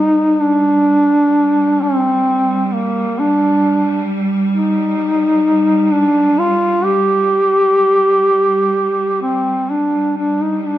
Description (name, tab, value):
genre	caucasian folk, Caucasian lament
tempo	65 BPM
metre	3/4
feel	rubato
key	G minor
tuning	A4 = 440 Hz
part	dark duduk	melody	0.0-10.8 s	Bb3 to G4	-13 LUFS	equal	none
part	clear studio cello section	drone	0.0-10.8 s	G3	-21 LUFS	right 2 dB	none
room	moderate recital hall reverb, RT60 1.8 s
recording	minimal, uncompressed stereo recording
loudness	-12 LUFS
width	side -13 dB against mid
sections	0.0-10.2 A section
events	none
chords	none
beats	0.89 | 1.82 2.74 3.64 | 4.54 5.45 6.37 | 7.30 8.24 9.21 | 10.19